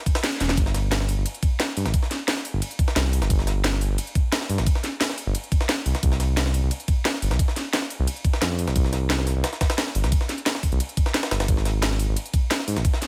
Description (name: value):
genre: liquid drum and bass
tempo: 176 BPM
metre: 4/4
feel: straight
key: unclear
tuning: A4 = 440 Hz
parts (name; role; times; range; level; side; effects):
- drum and bass drum kit; drums; 0.1-13.1 s; hi-hat, snare drum; -29 LUFS; equal; none
- electronic kick drum; drums; 0.1-12.9 s; none; -24 LUFS; equal; none
- jungle sampler-style drum kit; drums; 0.1-13.1 s; hi-hat, ride cymbal, snare drum; -33 LUFS; equal; high-pass filter on cymbals, high-pass filter on snare, high-pass filter on hats
- smooth synth bass; bass; 0.4-12.8 s; E1 to Ab2; -25 LUFS; equal; none
room: digital ambience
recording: none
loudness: -24 LUFS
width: mono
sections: 0.6-13.1 A section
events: kick drops out 0.2-0.6; band accent 0.2; drum fill 0.4; drop 0.6-13.1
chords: none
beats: 0.23 | 0.57 0.92 1.26 1.60 | 1.94 2.28 2.62 2.96 | 3.30 3.64 3.98 4.33 | 4.67 5.01 5.35 5.69 | 6.03 6.37 6.71 7.05 | 7.39 7.73 8.07 8.42 | 8.76 9.10 9.44 9.78 | 10.12 10.46 10.80 11.14 | 11.48 11.82 12.17 12.51 | 12.85